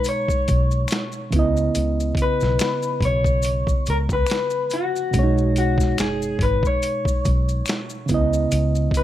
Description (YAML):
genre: R&B, neo-soul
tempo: 71 BPM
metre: 4/4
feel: swing 56% on 16ths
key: B major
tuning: A4 = 440 Hz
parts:
  - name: electric guitar through a small old amp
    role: melody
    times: 0.0-9.0 s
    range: F#4 to C#5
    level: -24 LUFS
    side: left 3 dB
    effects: slapback echo
  - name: reed electric piano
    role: accompaniment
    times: 0.0-9.0 s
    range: B2 to D#5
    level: -25 LUFS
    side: right 4 dB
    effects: overdrive
  - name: maracas and finger snaps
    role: percussion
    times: 0.0-9.0 s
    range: none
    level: -34 LUFS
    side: left 6 dB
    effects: none
  - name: boom bap sampler-style drum kit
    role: drums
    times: 0.1-9.0 s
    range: finger snaps, hi-hat, kick drum, snare drum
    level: -23 LUFS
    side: equal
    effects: none
  - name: vintage muted fingered electric bass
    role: bass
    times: 0.5-8.9 s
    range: F#1 to C#2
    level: -22 LUFS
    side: equal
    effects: none
room: little or no reverb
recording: none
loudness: -18 LUFS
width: side -13 dB against mid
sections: 0.0-9.0 A section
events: none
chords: 0.0 B69; 1.3 C#m9; 5.1 B69; 8.1 C#m9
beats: 0.06 0.91 | 1.75 2.60 3.44 4.29 | 5.13 5.98 6.83 7.67 | 8.52